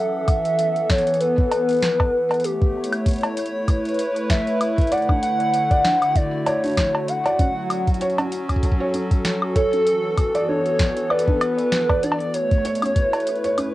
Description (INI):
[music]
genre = IDM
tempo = 97 BPM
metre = 4/4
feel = swing 56% on 16ths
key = unclear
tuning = A4 = 439 Hz
[part]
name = warbly nostalgic lead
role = melody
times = 0.0-13.7 s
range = G4 to F#5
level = -21 LUFS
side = equal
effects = lush chorus, cassette tape, analog delay
[part]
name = hollow soft pad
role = sustained chords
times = 0.0-13.7 s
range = D3 to F#5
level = -25 LUFS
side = equal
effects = chorus, cassette tape
[part]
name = electro analog drum machine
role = drums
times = 0.3-13.7 s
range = cowbell, hi-hat, snare drum, woodblock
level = -27 LUFS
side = equal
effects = cassette tape
[part]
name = electronic kick drum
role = drums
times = 0.3-13.1 s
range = none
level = -19 LUFS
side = equal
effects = cassette tape
[part]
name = felt-muted upright piano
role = arpeggios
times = 4.9-13.7 s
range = C#4 to D5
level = -26 LUFS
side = right 1 dB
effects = cassette tape, analog delay
[sound]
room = moderate small room reverb, RT60 0.5 s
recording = home recording on cassette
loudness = -18 LUFS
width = side -16 dB against mid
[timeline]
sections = 0.0-13.7 A section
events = kick drops out 13.6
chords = 0.0 Esus4; 2.4 A7; 4.9 Dmaj7; 7.4 F#m7; 9.9 E7sus4; 12.3 A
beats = 0.59 1.21 1.82 | 2.44 3.06 3.68 4.30 | 4.92 5.54 6.15 6.77 | 7.39 8.01 8.63 9.25 | 9.87 10.48 11.10 11.72 | 12.34 12.96 13.58